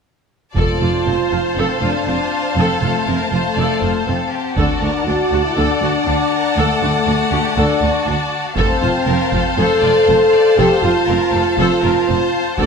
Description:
cinematic, epic orchestral film score; 120 BPM; 4/4; straight; F major; A4 = 440 Hz
clear symphonic violin section; melody; 0.5-12.7 s; F4 to D5; -25 LUFS; left 5 dB
rich studio violin section; second line; 0.6-12.7 s; F5 to A5; -22 LUFS; left 2 dB
clear symphonic viola section; accompaniment; 0.6-12.7 s; C4 to D5; -22 LUFS; equal
warm French horn section; sustained chords; 0.6-12.7 s; A3 to A4; -18 LUFS; left 1 dB
clear symphonic double bass section; bass; 0.6-12.7 s; F1 to D2; -22 LUFS; right 4 dB
rich symphonic cello section; bass; 0.6-12.7 s; D2 to F2; -23 LUFS; right 3 dB
taiko ensemble; drums; 0.6-1.5, 4.6-5.5, 8.6-9.6, 12.6-12.7 s; -24 LUFS; equal
timpani; percussion; 0.6-1.3 s; F2; -26 LUFS; equal
wet recital hall reverb, RT60 1.4 s; -14 LUFS; side -5 dB against mid
0.6-12.7 A section
0.6 F; 4.6 D; 8.6 F
| 0.56 1.06 1.57 2.07 | 2.57 3.07 3.57 4.07 | 4.57 5.07 5.57 6.07 | 6.57 7.07 7.57 8.06 | 8.56 9.06 9.57 10.08 | 10.58 11.08 11.58 12.08 | 12.59

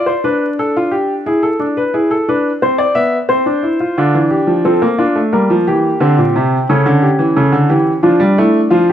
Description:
classical, baroque-style 3-part fugue for grand piano; 89 BPM; 4/4; straight; D minor; A4 = 440 Hz
clear baby grand piano; solo; 0.0-8.9 s; Bb2 to E5; -11 LUFS; equal
light reverb; close, detailed microphones, vinyl crackle; -11 LUFS; side -10 dB against mid
0.0-8.9 A section
0.0 Dm; 1.3 E7; 2.6 Dm13/B; 4.0 Dm; 5.3 Gm; 6.7 A7/C#; 8.0 Dm/F
0.60 | 1.27 1.95 2.62 3.30 | 3.98 4.65 5.33 6.00 | 6.68 7.35 8.03 8.71

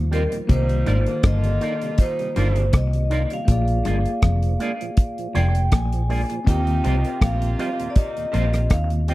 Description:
lovers rock reggae; 80 BPM; 4/4; swing 54% on 16ths; Eb major; A4 = 437 Hz
bell-like tine electric piano; accompaniment; 0.0-9.1 s; Eb3 to Eb5; -30 LUFS; left 3 dB; fast stereo tremolo, slapback echo
tonewheel organ; accompaniment; 0.0-9.1 s; Eb2 to F4; -33 LUFS; right 6 dB; chorus vibrato, stopped rotary speaker, slapback echo
vintage muted fingered electric bass; bass; 0.0-9.1 s; F1 to Eb2; -20 LUFS; equal
vibraphone with medium hard mallets; melody; 0.1-9.1 s; Bb4 to Ab5; -28 LUFS; equal; tape echo
electric guitar with an envelope filter; stabs; 0.1-9.1 s; Bb3 to Eb5; -29 LUFS; right 2 dB; tremolo, slapback echo
damped 70s drum kit; drums; 0.1-9.1 s; hi-hat, kick drum, rim click; -17 LUFS; equal
warm horn section; second line; 0.5-8.6 s; Bb2 to F4; -34 LUFS; right 2 dB; slapback echo
twangy electric guitar; riff; 0.5-8.9 s; F2 to Eb3; -30 LUFS; left 4 dB; harmonic tremolo, slapback echo
studio ambience; dry, close 1970s-style studio recording; -18 LUFS; side -18 dB against mid
0.0-9.1 A section
0.5 Cm11; 3.5 Bb7; 6.5 Eb69
| 0.49 1.24 1.99 2.74 | 3.48 4.23 4.98 5.72 | 6.47 7.22 7.96 8.71

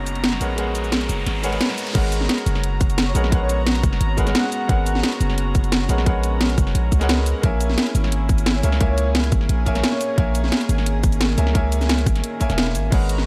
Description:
liquid drum and bass; 175 BPM; 4/4; straight; G# minor; A4 = 440 Hz
bright baby grand piano; accompaniment; 0.0-13.3 s; G#3 to G#5; -29 LUFS; equal; low-pass filter, tape echo
warm studio string section; sustained chords; 0.0-13.3 s; D#3 to A#5; -33 LUFS; equal; sidechain pumping
long sustained 808-style bass; bass; 0.0-13.3 s; E1 to C#2; -23 LUFS; equal
riser; sound effects; 0.0-1.9 s; -34 LUFS; equal
drum and bass drum kit; drums; 0.1-13.2 s; crash cymbal, hi-hat, shaker, snare drum; -26 LUFS; equal; overdrive
electronic kick drum; drums; 1.9-13.0 s; -22 LUFS; equal; overdrive
breathy flute-like synth lead; melody; 3.1-5.0, 8.6-10.4 s; C#5 to F#5; -32 LUFS; equal; chorus, tape echo
little or no reverb; -20 LUFS; mono
0.0-1.9 A section; 1.9-13.3 B section
build-up 0.0-1.9; riser 0.0-1.9; drop 1.9-13.3
0.0 G#m11; 7.4 A#m7b5
0.24 | 0.58 0.92 1.26 1.61 | 1.95 2.29 2.64 2.98 | 3.32 3.66 4.01 4.35 | 4.69 5.04 5.38 5.72 | 6.06 6.41 6.75 7.09 | 7.44 7.78 8.12 8.46 | 8.81 9.15 9.49 9.84 | 10.18 10.52 10.86 11.21 | 11.55 11.89 12.24 12.58 | 12.92

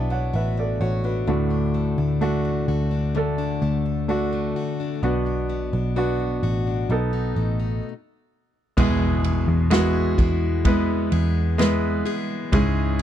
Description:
pop ballad; 64 BPM; 4/4; straight; E major from 8.8 s; A4 = 438 Hz
clear baby grand piano; accompaniment; 0.0-13.0 s; G#2 to A5; -24 LUFS; right 2 dB
picked plugged-in steel-string acoustic guitar; arpeggios; 0.0-13.0 s; B2 to G#4; -28 LUFS; left 10 dB
vintage muted picked electric bass; bass; 0.0-13.0 s; A1 to E2; -24 LUFS; equal
unplugged drum kit; drums; 8.8-13.0 s; crash cymbal, kick drum, ride cymbal, snare drum; -23 LUFS; equal
impact; sound effects; 8.9-12.5 s; -33 LUFS; right 1 dB
small room ambience; -20 LUFS; side -10 dB against mid
0.0-8.8 A section; 8.8-13.0 B section
stop 7.8-8.8; impact 8.8-12.5
0.0 Bm; 1.3 D; 5.0 Bm; 6.9 B7; 8.8 E
0.34 | 1.28 2.22 3.15 4.09 | 5.03 5.97 6.91 7.84 | 8.78 9.72 10.65 11.59 | 12.53

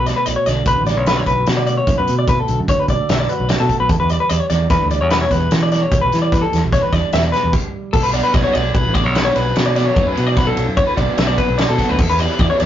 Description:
math rock and midwest emo; 148 BPM; 5/4; straight; A4 = 441 Hz
mellow electric guitar; accompaniment; 0.0-9.6 s; E2 to A4; -25 LUFS; right 5 dB
clean electric guitar; arpeggios; 0.0-12.7 s; A4 to E5; -18 LUFS; left 1 dB
modern bright fingered electric bass; bass; 0.0-12.7 s; A1 to E3; -19 LUFS; equal
loose indie drum kit; drums; 0.1-12.7 s; crash cymbal, hi-hat, kick drum, ride cymbal, snare drum; -19 LUFS; equal
crunchy overdriven guitar; riff; 8.1-12.7 s; E3 to G4; -23 LUFS; right 1 dB
light reverb; rough rehearsal-room recording, tube saturation, nothing above 7.5 kHz; -14 LUFS; side -11 dB against mid
0.0-7.9 A section; 7.9-12.7 B section
stop 7.5-7.9
0.0 Bm7; 3.9 Em7; 7.9 Bm7; 12.0 Em7
0.26 0.67 1.07 1.48 | 1.88 2.28 2.69 3.09 3.49 | 3.90 4.30 4.70 5.11 5.51 | 5.92 6.32 6.72 7.13 7.53 | 7.93 8.34 8.74 9.15 9.55 | 9.96 10.37 10.77 11.18 11.59 | 11.99 12.40

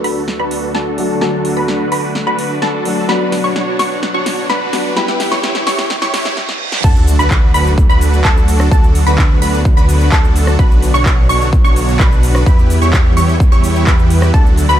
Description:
EDM, festival progressive house; 128 BPM; 4/4; straight; D major; A4 = 439 Hz
dark baby grand piano; accompaniment; 0.0-6.9 s; F#3 to G4; -22 LUFS; left 3 dB; sidechain pumping, tape echo
supersaw pad; sustained chords; 0.0-14.8 s; D2 to F#5; -23 LUFS; right 1 dB; phaser, sidechain pumping
wide unison pluck; arpeggios; 0.0-14.8 s; A5 to C#6; -20 LUFS; equal; sidechain pumping, tape echo
dense compressed supersaw; riff; 0.0-14.8 s; D4 to C#5; -19 LUFS; equal; sidechain pumping, low-pass filter, tape echo
big-room dance drum kit; drums; 0.0-14.8 s; crash cymbal, handclaps, hi-hat, rim click, shaker, snare drum; -22 LUFS; equal
riser, reverse cymbal and sub drop; sound effects; 0.0-8.7 s; -25 LUFS; right 1 dB
wide detuned saw bass; bass; 6.8-14.8 s; B1 to E2; -14 LUFS; equal; chorus, sidechain pumping
electronic kick drum; drums; 6.8-14.4 s; -11 LUFS; equal
light reverb; dark, warm production, high-pass filter; -10 LUFS; side -11 dB against mid
0.0-6.8 A section; 6.8-14.8 B section
build-up 0.0-6.8; drum fill 0.0-6.4, 6.4-6.8; filter sweep on supersaw synth 0.0-6.8; filter sweep 0.0-6.8; reverse cymbal 5.9-6.8; drop 6.8-14.8; impact 6.8-8.7
0.0 D; 3.1 Bm; 5.0 Em; 6.8 D; 10.6 Bm; 12.5 Em
0.28 0.75 | 1.22 1.68 2.15 2.62 | 3.09 3.56 4.03 4.50 | 4.96 5.43 5.90 6.37 | 6.84 7.31 7.78 8.25 | 8.71 9.18 9.65 10.12 | 10.59 11.06 11.53 12.00 | 12.46 12.93 13.40 13.87 | 14.34

